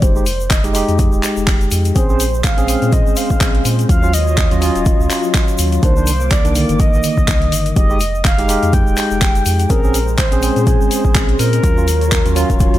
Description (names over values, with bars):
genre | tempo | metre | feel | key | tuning
deep house | 124 BPM | 4/4 | swing 56% on 16ths | unclear | A4 = 439 Hz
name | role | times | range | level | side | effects
mellow horn-like synth lead | melody | 0.0-12.8 s | Ab4 to G5 | -22 LUFS | equal | chorus, ping-pong delay
tine electric piano | stabs | 0.0-12.8 s | D3 to Ab4 | -20 LUFS | equal | auto-pan, sidechain pumping, ping-pong delay
warm sub bass | bass | 0.0-12.8 s | Eb1 to Bb2 | -18 LUFS | equal | sidechain pumping
deep house drum kit | drums | 0.0-12.8 s | handclaps, hi-hat | -22 LUFS | left 1 dB | overdrive
electronic kick drum | drums | 0.0-12.7 s | none | -15 LUFS | equal | overdrive
tube shaker | percussion | 0.0-12.8 s | none | -28 LUFS | left 5 dB | none
soft string machine | sustained chords | 2.0-12.8 s | Gb3 to D6 | -25 LUFS | equal | ensemble chorus, sidechain pumping
room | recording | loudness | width
digital ambience | none | -12 LUFS | side -14 dB against mid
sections
0.0-12.8 A section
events
none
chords
0.0 Fm9; 2.0 Bbm9; 3.9 Ebm9; 5.8 Cm9; 7.8 Fm9; 9.7 Bbm9; 11.6 Ebm9